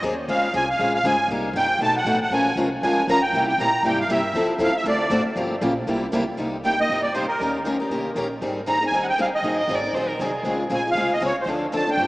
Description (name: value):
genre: acoustic string swing (jazz manouche)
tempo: 236 BPM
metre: 4/4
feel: swing 55% on 8ths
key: C minor from 6.4 s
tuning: A4 = 440 Hz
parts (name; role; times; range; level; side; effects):
- musette accordion; melody; 0.0-12.1 s; Bb4 to Bb5; -22 LUFS; right 1 dB; none
- picked steel-string acoustic guitar; accompaniment; 0.0-12.1 s; B2 to Bb4; -24 LUFS; left 1 dB; none
- upright bass; bass; 0.0-12.1 s; G1 to C3; -36 LUFS; equal; none
- picked steel-string acoustic guitar; accompaniment; 2.3-12.1 s; C3 to Bb4; -29 LUFS; right 1 dB; none
- warm violin; second line; 9.6-10.7 s; Ab4 to Eb5; -28 LUFS; right 1 dB; none
room: wet cathedral reverb, RT60 5.3 s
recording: in a vast, echoing space, small speaker sound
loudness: -20 LUFS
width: side -20 dB against mid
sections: 0.0-6.4 A section; 6.4-12.1 B section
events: accordion solo 0.0-6.4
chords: 0.3 Dbmaj7; 1.3 Cm7; 1.8 B7; 2.3 Bbm7; 3.3 C7; 4.3 Fmaj7; 4.9 D7; 5.4 Gm7b5; 5.9 C7; 6.4 Cm7; 7.4 Eb7; 8.4 Abmaj7; 9.4 Ab7; 10.4 Dbmaj7; 11.5 Dm7